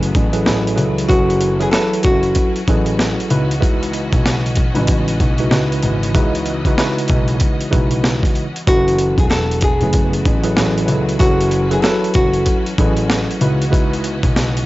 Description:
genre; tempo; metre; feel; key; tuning
hip hop, boom-bap hip-hop; 95 BPM; 4/4; swing 60% on 16ths; F# minor; A4 = 440 Hz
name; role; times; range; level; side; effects
tine electric piano; accompaniment; 0.0-14.7 s; C#3 to B4; -20 LUFS; right 1 dB; overdrive, fast stereo tremolo
bright studio string section; sustained chords; 0.0-14.7 s; E3 to D#5; -28 LUFS; left 1 dB; none
dark concert grand piano; bass; 0.0-14.7 s; E1 to C#2; -19 LUFS; equal; transformer saturation
boom bap sampler-style drum kit; drums; 0.0-14.7 s; hi-hat, kick drum, snare drum; -18 LUFS; equal; overdrive, vintage 12-bit sampler grit
nylon-string guitar; melody; 1.1-2.5, 8.7-12.6 s; F#4 to A4; -18 LUFS; equal; none
room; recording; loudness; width
small room reverb; dry, gritty hardware recording, nothing above 7.7 kHz; -13 LUFS; side -18 dB against mid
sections
0.0-14.7 A section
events
none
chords
0.0 F#m11; 3.3 C#m11; 8.7 F#m11; 13.4 C#m11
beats
0.47 | 1.10 1.73 2.36 2.99 | 3.62 4.25 4.89 5.52 | 6.15 6.78 7.41 8.04 | 8.68 9.31 9.94 10.57 | 11.20 11.83 12.46 13.10 | 13.73 14.36

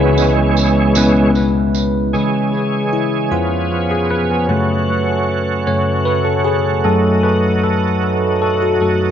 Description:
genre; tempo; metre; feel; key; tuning
slow gospel; 51 BPM (dotted quarters); 6/8; straight; unclear; A4 = 438 Hz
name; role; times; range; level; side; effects
bell-like tine electric piano; accompaniment; 0.0-9.1 s; C#2 to C#5; -14 LUFS; left 1 dB; phaser, dub echo
bright tonewheel organ; sustained chords; 0.0-9.1 s; C#3 to G#4; -18 LUFS; right 2 dB; slow rotary speaker, overdrive, chorus vibrato
tambourine; percussion; 0.2-2.1 s; none; -24 LUFS; right 7 dB; dub echo
room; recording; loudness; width
moderate spring reverb, RT60 1.6 s; echo-heavy mix, nothing above 7.5 kHz; -13 LUFS; side -9 dB against mid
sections
0.0-2.1 A section; 2.1-9.1 B section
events
tonewheel organ solo 0.0-2.1; tine electric piano solo 2.1-9.1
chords
0.0 C#m7; 2.1 C#m; 3.3 C#7/E#; 4.5 F#m; 6.8 D#dim/F#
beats
0.95 | 2.13 3.31 | 4.48 5.66 | 6.84 8.02

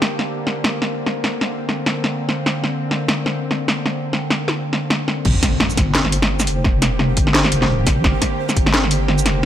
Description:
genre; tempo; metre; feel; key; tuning
half-time drum and bass; 172 BPM; 4/4; swing 57% on 16ths, half-time; G minor; A4 = 442 Hz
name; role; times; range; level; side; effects
bowed-like drone; sustained chords; 0.0-9.5 s; D3 to G4; -24 LUFS; equal; built-in reverb, sidechain pumping
drum and bass drum kit; drums; 0.0-9.5 s; crash cymbal, hi-hat, shaker, snare drum; -19 LUFS; equal; none
deep soft wobble bass; bass; 5.3-9.5 s; D1 to G1; -19 LUFS; equal; chorus
electronic kick drum; drums; 5.3-8.6 s; none; -19 LUFS; equal; none
impact; sound effects; 5.3-6.6 s; none; -25 LUFS; equal; none
pulsing gated texture; texture; 5.5-9.5 s; C4 to C5; -28 LUFS; equal; chorus, built-in reverb
room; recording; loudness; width
light reverb; none; -16 LUFS; side -11 dB against mid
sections
0.0-5.3 A section; 5.3-9.5 B section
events
drop 5.3-9.5; impact 5.3-6.6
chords
0.0 Gm (rootless); 5.3 Gm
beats
0.02 0.37 0.72 | 1.06 1.41 1.76 2.11 | 2.46 2.81 3.16 3.51 | 3.86 4.21 4.55 4.90 | 5.25 5.60 5.95 6.30 | 6.65 7.00 7.34 7.69 | 8.04 8.39 8.74 9.09 | 9.44

